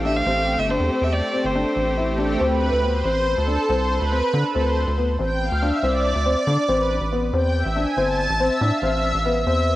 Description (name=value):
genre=progressive instrumental, progressive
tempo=140 BPM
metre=5/4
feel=straight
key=D dorian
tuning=A4 = 437 Hz
part: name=lush unison pad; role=accompaniment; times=0.0-9.8 s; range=A3 to A5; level=-23 LUFS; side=right 1 dB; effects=chorus, cassette tape
part: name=rubbery square bass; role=bass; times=0.0-9.8 s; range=G1 to D3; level=-23 LUFS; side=equal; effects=none
part: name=rich violin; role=melody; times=0.1-2.1 s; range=C5 to F5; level=-23 LUFS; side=equal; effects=none
part: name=dark grand piano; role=arpeggios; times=0.1-9.7 s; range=B3 to E4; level=-24 LUFS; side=left 2 dB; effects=cassette tape, tape echo
room=light reverb, studio ambience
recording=home recording on cassette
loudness=-18 LUFS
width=side -15 dB against mid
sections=0.0-2.4 A section; 2.4-9.8 B section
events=analog synth pad solo 2.4-9.8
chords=0.0 Am7; 2.4 D5; 6.7 Am9